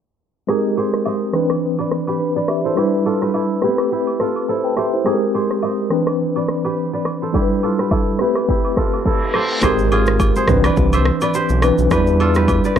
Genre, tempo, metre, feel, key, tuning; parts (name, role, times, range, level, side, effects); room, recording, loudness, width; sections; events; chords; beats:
afrobeats; 105 BPM; 4/4; swing 55% on 16ths; C major; A4 = 440 Hz
mellow tine electric piano; accompaniment; 0.5-12.8 s; E3 to A5; -18 LUFS; left 1 dB; medium stereo tremolo
kora; riff; 0.5-12.8 s; Eb4 to E5; -24 LUFS; right 4 dB; analog delay
afro-pop drum kit; drums; 0.5-12.8 s; kick drum, rim click, shaker, toms; -21 LUFS; equal
agogo bells and woodblock; percussion; 0.5-12.6 s; -29 LUFS; right 2 dB
reverse cymbal and impact; sound effects; 8.8-11.9 s; -28 LUFS; left 1 dB
round analog bass; bass; 9.6-12.8 s; Ab1 to E2; -18 LUFS; equal
moderate small room reverb, RT60 0.6 s; dry, gritty hardware recording, transformer saturation, low-pass filter; -15 LUFS; side -8 dB against mid
0.5-9.6 A section; 9.6-12.8 B section
filter sweep 0.5-9.6; reverse cymbal 8.8-9.6; impact 9.6-11.9
0.5 Abmaj9; 1.3 Cmaj9; 2.8 Em7; 3.6 Am9; 5.1 Abmaj9; 5.9 Cmaj9; 7.3 Em7; 8.2 Am9; 9.6 Abmaj9; 10.5 Cmaj9; 11.9 Em7
| 0.48 1.05 1.63 2.20 | 2.77 3.34 3.91 4.48 | 5.05 5.63 6.20 6.77 | 7.34 7.91 8.48 9.05 | 9.63 10.20 10.77 11.34 | 11.91 12.48